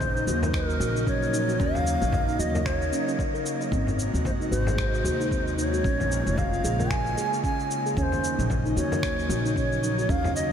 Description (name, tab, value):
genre	organic downtempo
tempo	113 BPM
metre	4/4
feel	swing 58% on 16ths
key	Eb dorian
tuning	A4 = 440 Hz
part	breathy bright low ney	melody	0.0-10.5 s	Bb4 to Ab5	-29 LUFS	equal	tape echo
part	airy breathy pad	sustained chords	0.0-10.5 s	C3 to Gb4	-32 LUFS	equal	chorus, sidechain pumping
part	upright bass	bass	0.0-10.4 s	F1 to Eb2	-28 LUFS	equal	sidechain pumping
part	electronic cabasa and finger snaps	drums	0.0-10.5 s	none	-37 LUFS	equal	overdrive, small room ambience
part	electronic kick drum	drums	0.0-10.2 s	none	-30 LUFS	equal	overdrive, small room ambience
part	frame drum	percussion	0.0-10.3 s	none	-36 LUFS	left 2 dB	none
part	wind-like tuned noise texture	texture	0.0-10.5 s	Eb5	-39 LUFS	right 3 dB	built-in reverb
part	kalimba	arpeggios	0.2-10.2 s	C4 to Db5	-31 LUFS	equal	tape echo
room	moderate huge ambient reverb, RT60 7.7 s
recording	dreamy mix soaked in reverb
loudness	-23 LUFS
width	side -8 dB against mid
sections	0.0-10.5 A section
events	none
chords	0.0 Ebm7; 3.7 Ab9; 5.8 Bbm7; 8.0 Ebm7